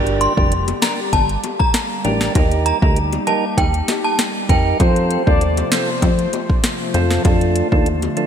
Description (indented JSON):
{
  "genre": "dancehall",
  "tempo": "98 BPM",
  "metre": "4/4",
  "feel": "straight",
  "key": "G minor",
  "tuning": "A4 = 441 Hz",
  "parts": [
    { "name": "percussive tonewheel organ", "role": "accompaniment", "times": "0.0-8.3 s", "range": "C4 to Bb4", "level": "-22 LUFS", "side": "right 3 dB", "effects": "slow rotary speaker" },
    { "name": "hollow soft pad", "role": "sustained chords", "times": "0.0-8.3 s", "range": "C3 to G4", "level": "-26 LUFS", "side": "left 2 dB", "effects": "chorus, sidechain pumping" },
    { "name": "plucky analog bass", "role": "bass", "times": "0.0-8.1 s", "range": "F1 to F2", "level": "-19 LUFS", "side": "equal", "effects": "none" },
    { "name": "afro-pop drum kit", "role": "drums", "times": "0.1-8.3 s", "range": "hi-hat, kick drum, snare drum", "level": "-18 LUFS", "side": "equal", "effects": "gated reverb" },
    { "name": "synth chime", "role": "melody", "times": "0.2-4.6 s", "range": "G5 to C6", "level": "-22 LUFS", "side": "equal", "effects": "ensemble chorus, phaser, tremolo, ping-pong delay" },
    { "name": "bongos", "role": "percussion", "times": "0.7-8.3 s", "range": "none", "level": "-31 LUFS", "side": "left 9 dB", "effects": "none" },
    { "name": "mellow horn section", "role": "second line", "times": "4.8-6.9 s", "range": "C4 to D5", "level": "-25 LUFS", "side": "left 4 dB", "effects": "ping-pong delay" }
  ],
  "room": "moderate lush hall reverb, RT60 3.0 s",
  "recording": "bright 1980s-style digital production",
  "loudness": "-15 LUFS",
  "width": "side -8 dB against mid",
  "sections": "0.0-8.3 A section",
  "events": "none",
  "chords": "0.0 Gm; 2.4 Eb; 4.8 F; 7.2 Dm"
}